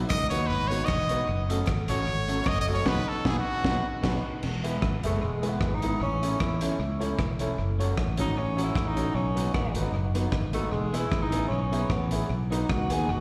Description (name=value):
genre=ska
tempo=152 BPM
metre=4/4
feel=swing 54% on 8ths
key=E major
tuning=A4 = 440 Hz
part: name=electric guitar through a small old amp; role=accompaniment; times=0.0-13.1 s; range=G#3 to G#4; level=-37 LUFS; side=equal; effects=slapback echo
part: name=dark upright piano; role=stabs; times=0.0-13.0 s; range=A3 to C#5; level=-38 LUFS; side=equal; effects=slapback echo
part: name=fingered electric bass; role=bass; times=0.0-13.2 s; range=E1 to E2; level=-31 LUFS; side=equal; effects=none
part: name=brilliant trumpet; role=melody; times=0.1-3.9 s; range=F#4 to D#5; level=-32 LUFS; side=equal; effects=tape echo, slapback echo
part: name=crunchy breakbeat drum kit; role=drums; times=0.1-13.0 s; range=crash cymbal, hi-hat, kick drum, rim click, snare drum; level=-34 LUFS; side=equal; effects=tape echo
part: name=group handclap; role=percussion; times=0.1-2.6 s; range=none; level=-51 LUFS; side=equal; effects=none
part: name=mellow tenor saxophone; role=melody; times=5.1-13.2 s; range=G#3 to G#4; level=-34 LUFS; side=equal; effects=tape echo, slapback echo
room=light reverb, small room ambience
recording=live gig heard through the venue's PA, recital hall reverb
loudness=-27 LUFS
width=mono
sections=0.0-4.4 A section; 4.4-13.2 A section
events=trumpet solo 0.0-4.4; band accent 2.9-4.4; tenor saxophone solo 4.4-13.2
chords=0.0 B; 1.3 F#m; 2.9 B; 4.4 E; 6.0 A; 7.6 F#m; 9.2 B; 10.7 E; 12.3 B